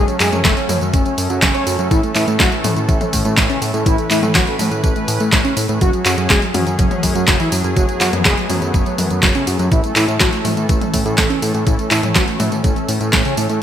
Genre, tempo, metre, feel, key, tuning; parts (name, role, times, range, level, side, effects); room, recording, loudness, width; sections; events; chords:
italo disco; 123 BPM; 4/4; straight; A4 = 436 Hz
mellow synth brass; melody; 0.0-13.6 s; C#3 to C#5; -20 LUFS; right 1 dB; chorus, digital delay
warm analog pad; sustained chords; 0.0-13.6 s; E3 to B4; -23 LUFS; left 1 dB; chorus, tremolo
fat analog bass; bass; 0.0-13.6 s; F#1 to A2; -21 LUFS; equal
house drum kit; drums; 0.1-13.6 s; handclaps, hi-hat, snare drum, tambourine, toms; -18 LUFS; equal
electronic kick drum; drums; 0.4-13.2 s; -18 LUFS; equal
moderate lush hall reverb, RT60 1.7 s; bright 1980s-style digital production; -13 LUFS; side -10 dB against mid
0.0-13.6 A section
0.0 F#madd9; 1.9 A; 5.8 F#madd9; 9.7 A